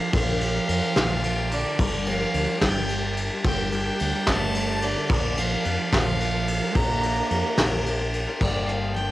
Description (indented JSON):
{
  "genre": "indie folk with a building arrangement",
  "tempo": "72 BPM (dotted quarters)",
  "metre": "6/8",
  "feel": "straight",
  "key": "Bb major",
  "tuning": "A4 = 440 Hz",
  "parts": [
    { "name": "bright fiddle", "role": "melody", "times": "0.0-9.1 s", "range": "D5 to Bb5", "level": "-29 LUFS", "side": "equal", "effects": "cassette tape" },
    { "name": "dark cello", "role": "second line", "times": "0.0-7.9 s", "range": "D3 to Bb3", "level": "-31 LUFS", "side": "right 7 dB", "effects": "cassette tape" },
    { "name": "picked steel-string acoustic guitar", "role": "accompaniment", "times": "0.0-9.1 s", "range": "G2 to Bb4", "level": "-33 LUFS", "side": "left 7 dB", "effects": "cassette tape" },
    { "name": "deep dub fingered electric bass", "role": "bass", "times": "0.1-9.1 s", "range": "G1 to F2", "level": "-29 LUFS", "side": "equal", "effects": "none" },
    { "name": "soft brush drum kit", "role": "drums", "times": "0.1-9.1 s", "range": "crash cymbal, hi-hat, kick drum, ride cymbal, snare drum", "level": "-24 LUFS", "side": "equal", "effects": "cassette tape" },
    { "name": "fingerpicked steel-string acoustic guitar", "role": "accompaniment", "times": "8.4-9.1 s", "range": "G2 to Bb4", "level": "-30 LUFS", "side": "left 4 dB", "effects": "cassette tape" }
  ],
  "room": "light reverb",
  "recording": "home recording on cassette",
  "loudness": "-21 LUFS",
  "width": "side -16 dB against mid",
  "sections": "0.0-8.4 A section",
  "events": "none",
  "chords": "0.0 Bb; 1.8 Gm; 5.1 Bb; 8.4 Gm",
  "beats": "| 0.13 0.96 | 1.79 2.62 | 3.45 4.27 | 5.10 5.93 | 6.76 7.58 | 8.41"
}